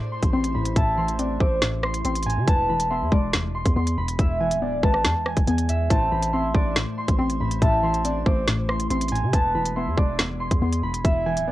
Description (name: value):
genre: hip hop, drill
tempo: 140 BPM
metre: 4/4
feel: half-time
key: A harmonic minor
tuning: A4 = 441 Hz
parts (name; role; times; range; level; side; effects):
- concert harp; melody; 0.0-11.5 s; E4 to D6; -27 LUFS; right 1 dB; low-pass filter
- soft round pluck; accompaniment; 0.0-11.5 s; E2 to C4; -28 LUFS; left 2 dB; chorus, low-pass filter, cassette tape
- glassy FM pad; sustained chords; 0.0-11.5 s; E3 to C5; -35 LUFS; left 1 dB; ensemble chorus, built-in reverb, cassette tape
- long sustained 808-style bass; bass; 0.2-11.5 s; D1 to C3; -27 LUFS; equal; none
- drill drum kit; drums; 0.2-11.5 s; hi-hat, kick drum, rim click, snare drum; -22 LUFS; equal; vintage 12-bit sampler grit
- soft octave-layered synth lead; second line; 0.8-11.5 s; B4 to E5; -30 LUFS; equal; chorus, phaser, cassette tape, tape echo
room: little or no reverb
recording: home recording on cassette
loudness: -20 LUFS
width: side -15 dB against mid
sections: 0.0-11.5 A section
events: none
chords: 0.0 Am; 2.5 E; 5.9 Am; 9.3 E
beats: 0.33 | 0.76 1.19 1.62 2.05 | 2.48 2.90 3.33 3.76 | 4.19 4.62 5.05 5.48 | 5.90 6.33 6.76 7.19 | 7.62 8.05 8.48 8.90 | 9.33 9.76 10.19 10.62 | 11.05 11.48